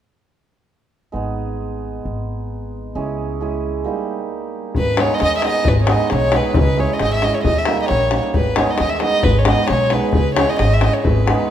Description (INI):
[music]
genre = balkan folk, Balkan wedding band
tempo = 134 BPM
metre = 2/4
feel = swing 55% on 16ths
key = G# harmonic minor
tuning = A4 = 440 Hz
[part]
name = hammered dulcimer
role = accompaniment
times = 1.1-11.5 s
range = G3 to G#4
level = -22 LUFS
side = right 4 dB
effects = none
[part]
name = upright bass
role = bass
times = 1.1-11.3 s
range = G#1 to D#2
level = -21 LUFS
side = equal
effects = none
[part]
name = davul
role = percussion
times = 4.7-11.4 s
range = none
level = -19 LUFS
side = left 3 dB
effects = none
[part]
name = dark violin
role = melody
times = 4.8-11.5 s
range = B4 to E5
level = -19 LUFS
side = equal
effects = none
[sound]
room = moderate recital hall reverb, RT60 1.7 s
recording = minimal, uncompressed stereo recording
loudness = -15 LUFS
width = side -10 dB against mid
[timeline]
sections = 1.1-4.8 A section; 4.8-11.5 B section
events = none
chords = 1.1 G#m; 2.9 C#m; 3.9 D#; 4.8 G#m; 6.6 C#m; 7.5 D#; 8.3 G#m; 10.1 C#m